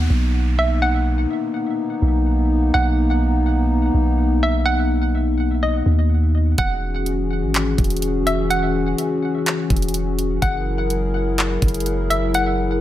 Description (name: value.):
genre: hip hop, atmospheric cloud-rap.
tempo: 125 BPM.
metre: 4/4.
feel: half-time.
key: B major.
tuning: A4 = 440 Hz.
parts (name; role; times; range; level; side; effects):
dark analog pad; sustained chords; 0.0-12.8 s; E3 to A#4; -22 LUFS; left 2 dB; lush chorus, sidechain pumping.
long sustained 808-style bass; bass; 0.0-12.8 s; E1 to D#2; -20 LUFS; equal; none.
downlifter; sound effects; 0.0-2.7 s; none; -36 LUFS; right 1 dB; none.
hollow square pluck; melody; 0.6-12.8 s; D#5 to F#5; -25 LUFS; right 1 dB; chorus, low-pass filter, tape echo.
trap drum kit; drums; 6.6-12.5 s; handclaps, hi-hat, kick drum; -21 LUFS; equal; none.
room: little or no reverb.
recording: none.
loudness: -17 LUFS.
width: side -13 dB against mid.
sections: 0.0-12.8 A section.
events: none.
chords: 0.0 Bmaj7; 6.6 E69; 10.4 F#9.